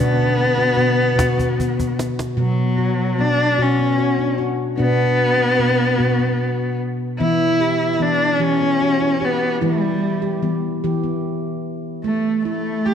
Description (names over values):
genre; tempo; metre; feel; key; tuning
world meditative, meditative tuned percussion; 50 BPM (dotted quarters); 6/8; straight; B minor; A4 = 440 Hz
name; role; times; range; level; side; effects
rich cello; melody; 0.0-12.9 s; F#3 to G4; -19 LUFS; left 1 dB; none
handpan; arpeggios; 0.0-12.9 s; B2 to G4; -20 LUFS; equal; none
cajon; percussion; 0.6-2.4 s; none; -25 LUFS; right 2 dB; none
room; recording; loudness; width
wet concert hall reverb, RT60 2.1 s; cassette tape; -16 LUFS; side -8 dB against mid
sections
0.0-2.4 A section; 2.4-12.9 A section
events
drum fill 1.4-2.4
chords
0.0 Bm; 7.2 Em; 12.0 A5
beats
1.18 | 2.38 3.58 | 4.79 6.00 | 7.21 8.41 | 9.62 10.83 | 12.04